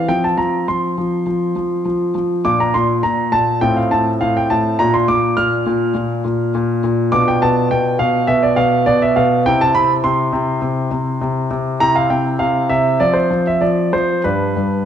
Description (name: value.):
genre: classical-period piano sonatina.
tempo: 102 BPM.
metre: 4/4.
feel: rubato.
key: C major from 7.1 s.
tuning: A4 = 440 Hz.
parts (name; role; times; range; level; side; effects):
clear concert grand piano; solo; 0.0-14.9 s; G2 to F6; -14 LUFS; equal; none.
room: moderate recital hall reverb, RT60 1.6 s.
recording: nothing above 10.9 kHz.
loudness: -14 LUFS.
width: side -9 dB against mid.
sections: 0.0-14.9 A section.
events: none.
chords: 0.1 F5; 2.4 Bb; 3.6 F/A; 4.8 Bb; 7.1 Bdim; 9.5 C; 13.0 F5; 14.2 G.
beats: | 0.10 0.69 1.27 1.86 | 2.45 3.03 3.62 4.21 | 4.80 5.37 5.95 6.54 | 7.12 7.70 8.28 8.86 | 9.45 10.03 10.62 11.21 | 11.80 12.40 13.01 13.62 | 14.24.